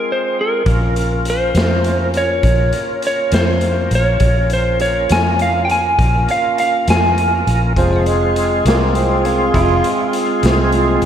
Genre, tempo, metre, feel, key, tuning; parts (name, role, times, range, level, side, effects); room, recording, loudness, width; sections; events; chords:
slow blues; 68 BPM (dotted quarters); 12/8; straight; A4 = 440 Hz
lightly driven lead guitar; melody; 0.0-8.0 s; Bb4 to Ab5; -17 LUFS; equal
bright tonewheel organ; sustained chords; 0.0-11.1 s; Ab3 to Bb4; -20 LUFS; equal; slow rotary speaker, chorus vibrato
vintage muted fingered electric bass; bass; 0.7-11.1 s; F1 to F2; -17 LUFS; equal
raw garage drum kit; drums; 0.7-11.1 s; hi-hat, kick drum, snare drum; -21 LUFS; equal
growling tenor saxophone; second line; 7.8-10.1 s; F3 to F4; -20 LUFS; right 2 dB; diffuse ambient delay
moderate lush hall reverb, RT60 2.1 s; dreamy mix soaked in reverb; -13 LUFS; side -9 dB against mid
0.0-11.1 A section
0.0 Fm; 0.7 Bbm; 7.8 Fm